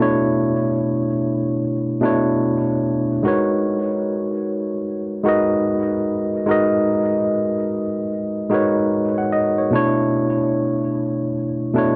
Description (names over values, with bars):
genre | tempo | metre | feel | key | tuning
hip hop | 74 BPM | 4/4 | swing 62% on 16ths | G# minor | A4 = 440 Hz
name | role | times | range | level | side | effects
tine electric piano | solo | 0.0-12.0 s | B2 to F#5 | -20 LUFS | equal | cassette tape, low-pass filter, tape echo
room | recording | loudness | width
moderate small room ambience, RT60 0.5 s | none | -20 LUFS | mono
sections
0.0-12.0 A section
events
none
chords
0.0 Bm11; 3.2 G#m11; 9.7 Bm11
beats
0.80 1.61 2.42 | 3.24 4.05 4.86 5.67 | 6.48 7.29 8.10 8.91 | 9.72 10.53 11.34